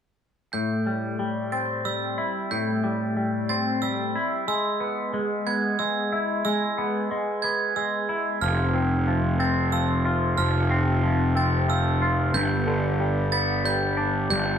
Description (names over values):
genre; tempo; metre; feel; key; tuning
post-rock; 61 BPM (dotted quarters); 6/8; straight; A minor; A4 = 440 Hz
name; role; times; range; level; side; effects
glockenspiel with brass mallets; arpeggios; 0.5-14.6 s; E6 to A6; -29 LUFS; right 5 dB; none
twangy electric guitar; arpeggios; 0.5-14.6 s; G2 to F4; -25 LUFS; left 1 dB; phaser
fuzz picked electric bass; bass; 8.4-14.6 s; F1 to G1; -23 LUFS; equal; overdrive
room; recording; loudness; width
moderate large studio reverb, RT60 0.9 s; band playing live in one room; -22 LUFS; side -8 dB against mid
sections
0.5-14.6 A section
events
none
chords
0.5 Am7; 4.5 E/G#; 8.4 F; 12.3 G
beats
| 0.54 1.53 | 2.52 3.50 | 4.48 5.47 | 6.45 7.43 | 8.42 9.40 | 10.38 11.36 | 12.34 13.33 | 14.31